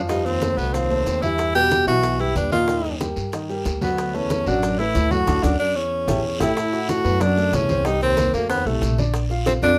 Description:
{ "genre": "Afro-Cuban jazz", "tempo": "186 BPM", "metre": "4/4", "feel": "straight", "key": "unclear", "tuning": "A4 = 440 Hz", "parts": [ { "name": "warm baby grand piano", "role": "accompaniment", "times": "0.0-9.8 s", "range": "Eb3 to F#5", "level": "-29 LUFS", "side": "equal", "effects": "none" }, { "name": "upright bass", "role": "bass", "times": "0.0-9.8 s", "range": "A1 to G2", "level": "-28 LUFS", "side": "equal", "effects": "none" }, { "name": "breathy tenor saxophone", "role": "melody", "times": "0.1-9.8 s", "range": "A3 to G4", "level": "-24 LUFS", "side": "equal", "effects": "none" }, { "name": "mellow baritone saxophone", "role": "second line", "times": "0.1-9.8 s", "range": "C2 to B2", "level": "-29 LUFS", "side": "equal", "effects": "none" }, { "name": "bongos", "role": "percussion", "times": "0.1-9.8 s", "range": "none", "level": "-34 LUFS", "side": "equal", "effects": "none" }, { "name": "congas", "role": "percussion", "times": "0.1-9.8 s", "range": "none", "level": "-32 LUFS", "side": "equal", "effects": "none" }, { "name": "guiro", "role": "percussion", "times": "0.1-9.8 s", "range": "none", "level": "-40 LUFS", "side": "equal", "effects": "none" }, { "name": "maracas", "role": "percussion", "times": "0.1-9.8 s", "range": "none", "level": "-45 LUFS", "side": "equal", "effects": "none" } ], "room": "moderate club reverb, RT60 0.5 s", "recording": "none", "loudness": "-21 LUFS", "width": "mono", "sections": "0.0-6.6 A section; 6.6-9.8 B section", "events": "band accent 5.3-6.6; drum fill 5.8-6.6", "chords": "0.1 F7; 1.4 Em; 2.7 Ebadd9; 4.0 D69; 5.9 A7; 6.6 D69; 7.9 Cm7; 8.5 F; 9.1 Bb", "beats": "| 0.10 0.42 0.74 1.07 | 1.39 1.72 2.04 2.36 | 2.69 3.01 3.33 3.66 | 3.98 4.30 4.63 4.95 | 5.27 5.60 5.92 6.24 | 6.57 6.89 7.21 7.53 | 7.85 8.18 8.50 8.82 | 9.14 9.46 9.79" }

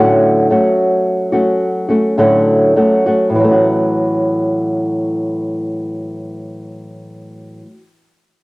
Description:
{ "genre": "pop", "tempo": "50-56 BPM", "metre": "4/4", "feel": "straight", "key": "A major", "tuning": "A4 = 442 Hz", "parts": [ { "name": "flamenco guitar", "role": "solo", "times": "0.0-7.8 s", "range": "A2 to F#4", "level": "-13 LUFS", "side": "equal", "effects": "none" } ], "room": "moderate spring reverb, RT60 1.8 s", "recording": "home recording on cassette", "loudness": "-12 LUFS", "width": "side -22 dB against mid", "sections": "0.0-3.4 A section; 3.4-8.1 B section", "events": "slowing down 0.0-3.4", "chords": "0.0 Dmaj7/A; 3.4 A6", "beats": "1.04 2.18 | 3.36 4.56 5.74 6.94" }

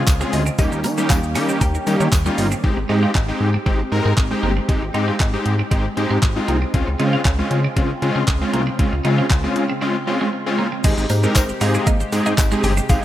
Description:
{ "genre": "dance-pop", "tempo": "117 BPM", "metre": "4/4", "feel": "straight", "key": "Ab major", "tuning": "A4 = 440 Hz", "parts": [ { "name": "mallet-like synth pluck", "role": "melody", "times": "0.0-2.3, 10.8-13.0 s", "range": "C5 to G5", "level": "-29 LUFS", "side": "equal", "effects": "chorus, dub echo" }, { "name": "big bright polysynth", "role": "accompaniment", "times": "0.0-13.0 s", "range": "G3 to Bb4", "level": "-21 LUFS", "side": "left 1 dB", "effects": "chorus, sidechain pumping" }, { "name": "lush unison pad", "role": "sustained chords", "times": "0.0-13.0 s", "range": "C3 to G4", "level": "-29 LUFS", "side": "right 1 dB", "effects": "chorus, phaser, sidechain pumping" }, { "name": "wide unison pluck", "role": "arpeggios", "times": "0.0-2.5, 10.8-13.0 s", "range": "G3 to Eb5", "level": "-32 LUFS", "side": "equal", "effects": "none" }, { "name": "twelve-string electric guitar", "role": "riff", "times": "0.0-12.9 s", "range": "G3 to F4", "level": "-30 LUFS", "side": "right 5 dB", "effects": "lush chorus" }, { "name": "chorused synth bass", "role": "bass", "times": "0.0-13.0 s", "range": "G1 to Eb3", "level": "-21 LUFS", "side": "equal", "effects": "sidechain pumping" }, { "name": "crisp 8-bit digital drum machine", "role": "drums", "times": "0.1-13.0 s", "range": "crash cymbal, handclaps, hi-hat, kick drum, shaker", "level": "-19 LUFS", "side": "equal", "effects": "overdrive" }, { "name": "tambourine", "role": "percussion", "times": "0.1-2.5, 10.8-13.0 s", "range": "none", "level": "-33 LUFS", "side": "left 2 dB", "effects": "none" } ], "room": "light reverb, digital ambience", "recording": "rough home demo mix", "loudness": "-16 LUFS", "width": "side -13 dB against mid", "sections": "0.0-2.6 A section; 2.6-10.8 B section; 10.8-13.0 A section", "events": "break 9.8-10.8", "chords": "0.0 Dbmaj7; 0.6 Eb7; 2.6 Abmaj7; 6.7 Dbmaj7; 10.8 Abmaj7", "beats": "0.07 | 0.59 1.10 1.61 2.12 | 2.64 3.15 3.66 4.18 | 4.69 5.20 5.71 6.23 | 6.74 7.25 7.76 8.28 | 8.79 9.30 9.82 10.33 | 10.84 11.36 11.87 12.38 | 12.89" }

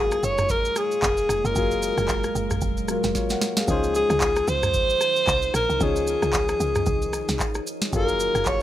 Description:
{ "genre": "amapiano", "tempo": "113 BPM", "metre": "4/4", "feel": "swing 58% on 16ths", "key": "Db major", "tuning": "A4 = 440 Hz", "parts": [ { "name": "breathy alto saxophone", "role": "melody", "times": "0.0-8.6 s", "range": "Ab4 to Db5", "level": "-23 LUFS", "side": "equal", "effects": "ping-pong delay, plate reverb" }, { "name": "warm grand piano", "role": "accompaniment", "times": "0.0-8.6 s", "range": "F3 to Gb5", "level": "-30 LUFS", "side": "left 4 dB", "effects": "none" }, { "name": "deep dark ambient pad", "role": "sustained chords", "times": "0.0-8.6 s", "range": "Bb2 to F4", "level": "-34 LUFS", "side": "right 3 dB", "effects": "chorus, built-in reverb, sidechain pumping" }, { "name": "woody log drum bass", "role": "bass", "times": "0.0-8.6 s", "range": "F1 to Db2", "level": "-29 LUFS", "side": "right 1 dB", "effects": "none" }, { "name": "booming analog drum machine", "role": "drums", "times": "0.1-8.6 s", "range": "handclaps, kick drum, rim click, shaker, snare drum, toms", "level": "-26 LUFS", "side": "right 1 dB", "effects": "none" } ], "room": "wet studio reverb, RT60 0.5 s", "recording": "rough home demo mix", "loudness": "-20 LUFS", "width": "side -12 dB against mid", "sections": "0.0-8.6 A section", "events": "drum fill 3.1-3.7", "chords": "0.0 Gbmaj9; 3.7 Dbmaj9; 7.9 Gbmaj9", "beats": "0.49 1.03 | 1.56 2.09 2.62 3.15 | 3.68 4.21 4.74 5.27 | 5.80 6.34 6.87 7.40 | 7.93 8.46" }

